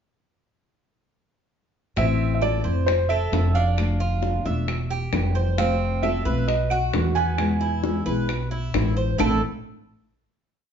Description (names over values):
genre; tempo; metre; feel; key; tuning
latin, Cuban son and guajira; 133 BPM; 4/4; straight; A minor; A4 = 439 Hz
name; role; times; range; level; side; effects
felt-muted upright piano; melody; 2.0-9.4 s; C5 to A5; -26 LUFS; right 3 dB; none
nylon-string guitar; accompaniment; 2.0-9.4 s; A2 to F#4; -29 LUFS; left 2 dB; none
Cuban tres; arpeggios; 2.0-9.4 s; A3 to E5; -29 LUFS; right 4 dB; none
upright bass; bass; 2.0-9.4 s; E1 to E2; -24 LUFS; equal; none
bongos; percussion; 2.0-9.3 s; none; -30 LUFS; left 4 dB; none
claves; percussion; 2.4-9.3 s; none; -36 LUFS; right 4 dB; none
room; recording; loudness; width
wet studio reverb, RT60 0.9 s; heard from further back in the room, nothing above 7.4 kHz; -20 LUFS; side -7 dB against mid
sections
2.0-9.2 verse; 9.2-10.7 final chord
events
none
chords
2.0 Am; 2.9 F; 3.8 Dm/F; 4.7 Em; 5.6 F; 6.5 B7; 7.4 E; 9.2 A5